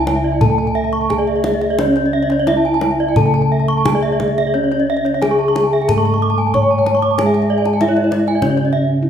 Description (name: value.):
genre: Balinese gamelan.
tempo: 87-101 BPM.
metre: 4/4.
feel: straight.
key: C# pelog.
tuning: A4 = 441 Hz.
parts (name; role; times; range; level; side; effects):
gamelan-type bronze metallophone; melody; 0.0-9.1 s; C#4 to C#5; -18 LUFS; left 1 dB; none.
gamelan-type bronze metallophone; accompaniment; 0.0-9.1 s; C#3 to A3; -23 LUFS; right 4 dB; none.
gamelan-type bronze metallophone; arpeggios; 0.0-8.8 s; C#5 to D6+35c; -21 LUFS; right 5 dB; none.
gamelan-type bossed gongs; bass; 0.0-9.1 s; C#2 to G#4; -22 LUFS; left 1 dB; none.
gamelan-type bronze metallophone; arpeggios; 0.1-8.7 s; C#5 to C#6; -21 LUFS; left 2 dB; none.
kendang; percussion; 0.1-8.7 s; none; -22 LUFS; left 1 dB; none.
room: wet recital hall reverb, RT60 1.6 s.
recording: minimal, uncompressed stereo recording.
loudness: -13 LUFS.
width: side -8 dB against mid.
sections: 0.0-9.1 A section.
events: none.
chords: none.